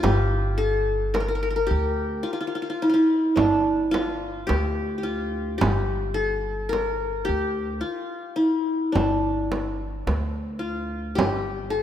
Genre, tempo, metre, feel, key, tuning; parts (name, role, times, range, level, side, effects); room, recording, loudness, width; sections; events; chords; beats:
Turkish makam ensemble; 108 BPM (eighths); 10/8; straight; G makam huseyni; A4 = 436 Hz
qanun; melody; 0.0-11.8 s; D4 to Bb4; -24 LUFS; left 1 dB
upright bass; bass; 0.0-11.8 s; G1 to D2; -27 LUFS; equal
frame drum; percussion; 0.0-11.4 s; -27 LUFS; right 2 dB
darbuka; percussion; 11.2-11.8 s; -36 LUFS; equal
moderate lush hall reverb, RT60 2.6 s; rough home demo mix; -22 LUFS; side -10 dB against mid
0.0-11.8 A section
| 0.03 0.59 1.15 1.71 2.27 2.82 3.38 3.94 4.50 5.05 | 5.61 6.17 6.73 7.28 7.84 8.40 8.96 9.51 10.07 10.63 | 11.19 11.74